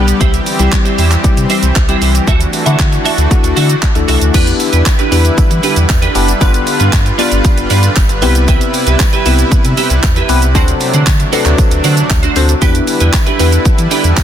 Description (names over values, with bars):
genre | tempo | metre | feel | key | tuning
dance-pop | 116 BPM | 4/4 | straight | E minor | A4 = 439 Hz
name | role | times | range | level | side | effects
tine electric piano | accompaniment | 0.0-14.1 s | G3 to D5 | -18 LUFS | left 7 dB | phaser, sidechain pumping
supersaw pad | sustained chords | 0.0-14.2 s | C3 to B4 | -18 LUFS | right 1 dB | sidechain pumping
twelve-string electric guitar | riff | 0.0-14.2 s | D4 to E5 | -18 LUFS | right 6 dB | ensemble chorus
sub bass with octave | bass | 0.0-14.2 s | F#1 to E3 | -13 LUFS | equal | sidechain pumping
house drum kit | drums | 0.1-14.2 s | crash cymbal, handclaps, hi-hat, kick drum, shaker | -13 LUFS | equal | none
tambourine | percussion | 4.3-14.2 s | none | -30 LUFS | right 11 dB | none
room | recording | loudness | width
digital ambience | dense, heavily limited modern master | -9 LUFS | side -10 dB against mid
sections
0.0-4.3 A section; 4.3-14.2 B section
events
none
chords
0.2 C; 2.3 Dadd9; 4.3 Em7; 6.4 G7; 8.2 Cmaj7; 10.6 D7; 12.6 Em7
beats
| 0.20 0.72 1.24 1.76 | 2.27 2.79 3.31 3.83 | 4.34 4.86 5.38 5.89 | 6.41 6.93 7.45 7.96 | 8.48 9.00 9.52 10.03 | 10.55 11.07 11.58 12.10 | 12.62 13.14 13.65 14.17